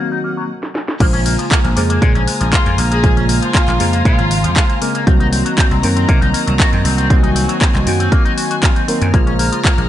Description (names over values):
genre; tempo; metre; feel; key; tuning
nu-disco, nu disco; 118 BPM; 4/4; straight; Bb minor; A4 = 440 Hz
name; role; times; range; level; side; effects
mellow tine electric piano; accompaniment; 0.0-9.9 s; Db3 to C5; -20 LUFS; equal; analog chorus, ping-pong delay
warm studio string section; sustained chords; 0.0-9.9 s; C3 to F6; -24 LUFS; left 1 dB; sidechain pumping
electric guitar with an envelope filter; riff; 0.0-9.8 s; F3 to Gb4; -23 LUFS; left 2 dB; lush chorus, low-pass filter, ping-pong delay
house drum kit; drums; 0.6-9.9 s; crash cymbal, handclaps, hi-hat, snare drum; -20 LUFS; left 1 dB; overdrive, low-pass filter on snare, small room reverb, low-pass filter on hats, low-pass filter on cymbals
vintage slap bass; bass; 1.0-9.9 s; Ab1 to C3; -17 LUFS; equal; tube saturation
electronic kick drum; drums; 1.0-9.8 s; none; -14 LUFS; equal; overdrive, small room reverb
warm studio violin section; melody; 2.5-4.8 s; F4 to Ab4; -22 LUFS; equal; digital delay
room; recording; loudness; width
little or no reverb; nothing above 11.0 kHz; -12 LUFS; side -12 dB against mid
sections
0.0-1.0 A section; 1.0-9.9 B section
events
stop 0.5-1.0; drum fill 0.6-1.0; drop 1.0-9.9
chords
0.0 Cm7b5; 1.0 Bbm7; 5.1 Cm7b5; 9.1 Bbm7